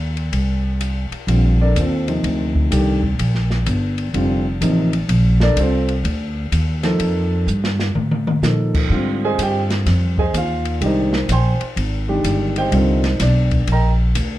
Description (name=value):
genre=modal jazz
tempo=126 BPM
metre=4/4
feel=swing 66% on 8ths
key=Bb major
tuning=A4 = 442 Hz
part: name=upright bass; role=bass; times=0.0-14.4 s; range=F1 to Bb2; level=-18 LUFS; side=equal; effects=none
part: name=open jazz drum kit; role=drums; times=0.2-14.3 s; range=crash cymbal, hi-hat, kick drum, ride cymbal, snare drum, toms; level=-25 LUFS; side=left 1 dB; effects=none
part: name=warm baby grand piano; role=accompaniment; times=1.3-13.9 s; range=C3 to C6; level=-20 LUFS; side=equal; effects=none
room=light reverb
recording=dark, warm production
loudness=-16 LUFS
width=side -15 dB against mid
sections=0.0-1.3 A section; 1.3-14.4 B section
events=drum fill 7.5-8.4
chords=0.0 Ab (rootless); 1.3 Bbmaj9; 8.9 Abmaj9